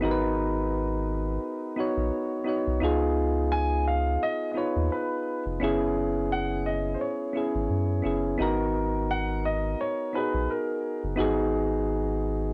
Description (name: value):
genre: lo-fi hip hop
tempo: 86 BPM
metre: 4/4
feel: swing 57% on 16ths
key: G# minor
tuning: A4 = 444 Hz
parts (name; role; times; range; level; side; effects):
- soft electric-piano-like synth keys; accompaniment; 0.0-12.5 s; B3 to C#5; -30 LUFS; equal; chorus, cassette tape, low-pass filter
- soft dub sub bass; bass; 0.0-12.5 s; E#1 to F#2; -32 LUFS; equal; tube saturation
- warm upright piano; melody; 3.5-11.0 s; A#4 to G#5; -32 LUFS; equal; low-pass filter
room: light reverb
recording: worn, warbling old tape, cassette tape, warbly pitch drift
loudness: -27 LUFS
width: mono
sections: 0.0-12.5 A section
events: none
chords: 0.0 G#m9; 2.8 C#9; 5.6 F#9sus4; 8.4 G#m9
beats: | 0.03 0.72 1.42 2.12 | 2.82 3.51 4.21 4.91 | 5.61 6.30 7.00 7.70 | 8.40 9.10 9.79 10.49 | 11.19 11.89